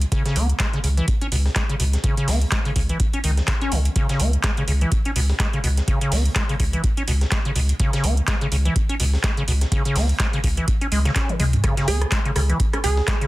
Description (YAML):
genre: acid house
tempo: 125 BPM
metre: 4/4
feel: swing 57% on 16ths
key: C# minor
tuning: A4 = 440 Hz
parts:
  - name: warm sub bass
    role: bass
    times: 0.0-13.0 s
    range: C#2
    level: -20 LUFS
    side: equal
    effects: sidechain pumping
  - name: booming analog drum machine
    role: drums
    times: 0.0-13.3 s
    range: handclaps, hi-hat, rim click, toms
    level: -26 LUFS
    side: equal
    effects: overdrive
  - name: breakbeat sampler-style drum kit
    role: drums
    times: 0.0-13.2 s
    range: hi-hat, snare drum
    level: -34 LUFS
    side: equal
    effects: high-pass filter on snare, sidechain pumping on hats, high-pass filter on hats, high-pass filter on room
  - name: acid bass, square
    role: riff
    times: 0.1-13.3 s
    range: B2 to C#4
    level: -25 LUFS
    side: equal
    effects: overdrive, lush chorus, digital delay
  - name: electronic kick drum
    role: drums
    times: 0.1-13.2 s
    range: none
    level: -23 LUFS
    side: equal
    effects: overdrive
  - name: glassy wavetable pluck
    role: melody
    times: 11.9-13.3 s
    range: G#4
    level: -26 LUFS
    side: right 4 dB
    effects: chorus, tape echo
room: little or no reverb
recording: dense, heavily limited modern master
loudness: -18 LUFS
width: side -18 dB against mid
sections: 0.0-13.3 A section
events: drum fill 11.3-11.6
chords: none